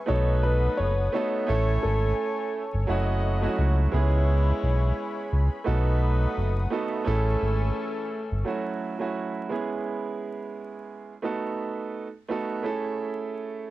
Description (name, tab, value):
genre	hip hop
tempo	86 BPM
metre	4/4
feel	swing 57% on 16ths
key	F# dorian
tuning	A4 = 439 Hz
part	warm analog pad	sustained chords	0.0-8.4 s	A3 to E6	-37 LUFS	left 1 dB	chorus, high-pass filter, low-pass filter, cassette tape
part	warm upright piano	melody	0.1-2.8 s	A4 to C#5	-29 LUFS	left 1 dB	high-pass filter, low-pass filter, cassette tape, analog delay
part	warm concert grand piano	accompaniment	0.1-13.7 s	F#3 to A4	-29 LUFS	right 4 dB	high-pass filter, low-pass filter, cassette tape
part	warm horn section	stabs	0.1-8.1 s	E3 to G#5	-35 LUFS	left 6 dB	high-pass filter, low-pass filter, cassette tape, analog delay
part	sub bass with octave	bass	0.1-8.4 s	F#1 to C#2	-23 LUFS	equal	none
room	little or no reverb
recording	home recording on cassette, vinyl crackle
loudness	-24 LUFS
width	side -16 dB against mid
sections	0.0-8.5 A section; 8.5-13.7 B section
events	none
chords	0.1 B7; 1.5 Amaj7; 2.9 F#m7; 3.9 C#m7; 5.7 B7; 7.1 Amaj7; 8.5 F#m7; 9.5 C#m7; 11.2 B7; 12.6 Amaj7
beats	| 0.09 0.78 1.48 2.18 | 2.88 3.57 4.27 4.97 | 5.67 6.36 7.06 7.76 | 8.46 9.15 9.85 10.55 | 11.25 11.95 12.64 13.34